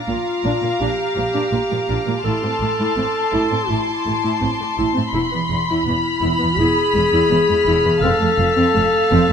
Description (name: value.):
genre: cinematic, suspense film score.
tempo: 83 BPM.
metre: 4/4.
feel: straight.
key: A harmonic minor.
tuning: A4 = 440 Hz.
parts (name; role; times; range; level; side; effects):
warm studio violin section; melody; 0.0-9.3 s; A5 to C6; -28 LUFS; left 4 dB; none.
dark studio violin section; second line; 0.0-9.3 s; F5 to B5; -24 LUFS; equal; none.
dark symphonic viola section; accompaniment; 0.0-9.3 s; F3 to E4; -24 LUFS; equal; none.
large celesta; texture; 0.0-2.3, 8.0-9.3 s; F5 to A6; -29 LUFS; left 6 dB; none.
rich studio violin section; texture; 0.0-9.3 s; D6 to B6; -30 LUFS; left 4 dB; none.
mellow clarinet; second line; 0.1-9.3 s; E4 to A4; -20 LUFS; left 2 dB; none.
rich studio double bass section; bass; 0.1-9.2 s; E1 to Bb1; -27 LUFS; right 2 dB; none.
warm studio cello section; bass; 0.1-9.3 s; E2 to Bb2; -23 LUFS; right 2 dB; none.
room: moderate scoring stage reverb, RT60 1.5 s.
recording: none.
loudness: -16 LUFS.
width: side -7 dB against mid.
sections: 0.0-9.3 A section.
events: none.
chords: 0.0 Bb; 2.2 Am; 5.1 E; 8.0 F.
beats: 0.07 0.80 1.52 | 2.24 2.96 3.69 4.41 | 5.13 5.86 6.58 7.30 | 8.02 8.75.